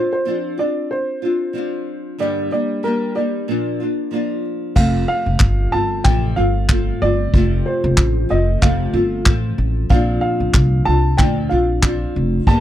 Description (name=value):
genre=acoustic pop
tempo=93 BPM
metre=4/4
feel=swing 55% on 16ths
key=F major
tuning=A4 = 444 Hz
part: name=dark upright piano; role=melody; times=0.0-12.6 s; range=Bb4 to A5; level=-23 LUFS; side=right 1 dB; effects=none
part: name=nylon-string guitar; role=accompaniment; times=0.0-12.6 s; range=F2 to G4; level=-21 LUFS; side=left 1 dB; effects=double-tracked left and right
part: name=upright bass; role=bass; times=4.8-12.6 s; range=F1 to D2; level=-18 LUFS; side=equal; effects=none
part: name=vintage brush drum kit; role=drums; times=4.8-12.6 s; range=crash cymbal, handclaps, kick drum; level=-16 LUFS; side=equal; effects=none
room=little or no reverb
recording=dry, close 1970s-style studio recording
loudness=-15 LUFS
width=side -12 dB against mid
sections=0.0-4.8 A section; 4.8-12.6 B section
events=none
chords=0.0 Bbadd9 (rootless); 2.2 Gm; 3.5 Bb; 4.8 F; 9.9 Bbadd9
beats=0.26 0.91 1.55 | 2.19 2.84 3.48 4.12 | 4.77 5.41 6.05 6.69 | 7.33 7.98 8.62 9.26 | 9.90 10.54 11.19 11.83 | 12.47